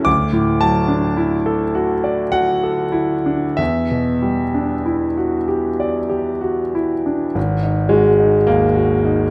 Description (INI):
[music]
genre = classical, impressionist solo piano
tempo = 46-54 BPM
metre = 3/4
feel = rubato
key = E minor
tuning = A4 = 440 Hz
[part]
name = bright concert grand piano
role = solo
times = 0.0-9.3 s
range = G#1 to D6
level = -18 LUFS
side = equal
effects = none
[sound]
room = moderate recital hall reverb, RT60 1.5 s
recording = none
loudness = -18 LUFS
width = mono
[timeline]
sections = 0.0-7.4 A section; 7.4-9.3 B section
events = none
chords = 0.1 Dadd9; 3.6 Em9; 7.4 G#sus2